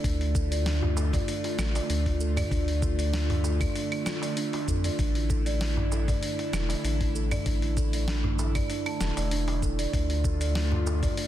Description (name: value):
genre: organic downtempo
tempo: 97 BPM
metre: 4/4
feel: swing 53% on 16ths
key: D minor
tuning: A4 = 442 Hz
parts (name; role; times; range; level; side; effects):
- airy breathy pad; sustained chords; 0.0-11.3 s; D3 to F4; -34 LUFS; equal; chorus, sidechain pumping
- kalimba; arpeggios; 0.0-11.3 s; D4 to A5; -33 LUFS; right 3 dB; ping-pong delay
- warm sub bass; bass; 0.0-11.1 s; E1 to F2; -27 LUFS; equal; none
- dusty soul sampler-style drum kit; drums; 0.0-11.3 s; cabasa, claves, hi-hat, snare drum; -35 LUFS; equal; none
- electronic kick drum; drums; 0.0-11.1 s; none; -30 LUFS; equal; none
- darbuka; percussion; 0.8-11.1 s; none; -36 LUFS; equal; none
room: digital ambience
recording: dense, heavily limited modern master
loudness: -25 LUFS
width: side -12 dB against mid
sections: 0.0-11.3 A section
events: none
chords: 0.0 Dm; 5.0 Asus4; 9.9 Dm